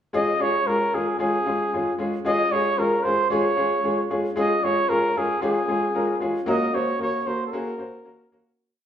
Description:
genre	soul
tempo	114 BPM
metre	4/4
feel	straight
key	Db major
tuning	A4 = 440 Hz
part	clear upright piano	accompaniment	0.1-8.5 s	Ab3 to C5	-24 LUFS	left 1 dB	none
part	breathy trumpet	melody	0.2-8.3 s	Ab4 to Eb5	-23 LUFS	right 1 dB	none
room	wet large studio reverb, RT60 1.3 s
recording	band playing live in one room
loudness	-20 LUFS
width	side -9 dB against mid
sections	0.1-8.6 verse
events	fade-out 6.5-8.6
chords	0.1 Db; 6.5 Gb

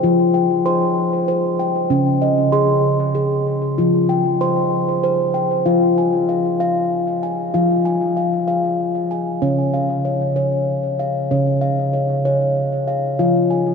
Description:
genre	world meditative, meditative tuned percussion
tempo	64 BPM (dotted quarters)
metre	6/8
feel	straight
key	F minor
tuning	A4 = 438 Hz
part	steel tongue drum	solo	0.0-13.7 s	Db3 to C6	-16 LUFS	left 1 dB	tape echo
room	wet cathedral reverb, RT60 7.0 s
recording	dreamy mix soaked in reverb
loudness	-16 LUFS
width	side -5 dB against mid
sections	0.0-5.7 A section; 5.7-13.7 B section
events	none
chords	0.0 F5; 1.9 Db5; 3.8 F5; 5.7 Fm; 9.4 Db; 13.2 Fm

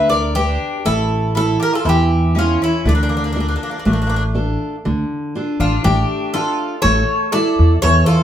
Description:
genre	greek folk, Greek bouzouki band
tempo	120 BPM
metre	4/4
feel	straight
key	D harmonic minor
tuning	A4 = 440 Hz
part	Greek bouzouki	melody	0.0-8.2 s	D4 to D5	-19 LUFS	left 1 dB	plate reverb
part	Greek bouzouki	second line	0.0-8.2 s	A3 to Bb4	-24 LUFS	left 2 dB	none
part	picked steel-string acoustic guitar	accompaniment	0.0-8.2 s	D3 to E5	-20 LUFS	right 1 dB	none
part	upright bass	bass	0.0-8.0 s	A1 to E2	-17 LUFS	equal	none
room	wet studio reverb, RT60 0.7 s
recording	heard from further back in the room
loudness	-15 LUFS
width	side -10 dB against mid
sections	0.0-4.9 A section; 4.9-8.2 B section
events	none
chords	0.0 G; 0.9 A; 2.9 Dm; 6.8 A

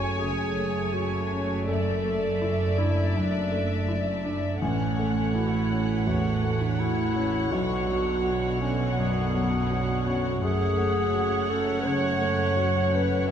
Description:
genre	cinematic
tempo	82 BPM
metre	4/4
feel	rubato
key	F# minor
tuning	A4 = 440 Hz
part	dark studio violin section	melody	0.0-13.3 s	E5 to G#5	-35 LUFS	left 1 dB	none
part	dark clarinet	second line	0.0-13.3 s	B3 to C#5	-29 LUFS	left 1 dB	none
part	warm studio violin section	second line	0.0-13.3 s	C#5 to D5	-35 LUFS	left 2 dB	none
part	dark grand piano	accompaniment	0.0-13.3 s	A1 to G#4	-30 LUFS	left 2 dB	none
part	warm studio viola section	accompaniment	0.0-13.3 s	D3 to A3	-36 LUFS	right 4 dB	none
part	dark studio double bass section	bass	0.0-13.3 s	F#1 to B1	-31 LUFS	right 3 dB	none
part	warm studio cello section	bass	0.0-13.3 s	F#2 to B2	-30 LUFS	right 3 dB	none
room	wet scoring stage reverb, RT60 2.1 s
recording	minimal, uncompressed stereo recording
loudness	-23 LUFS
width	side -8 dB against mid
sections	0.0-13.3 A section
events	none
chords	0.0 F#madd9; 1.7 Dadd9/F#; 4.6 A6; 7.5 Bmadd9; 10.4 F#madd9

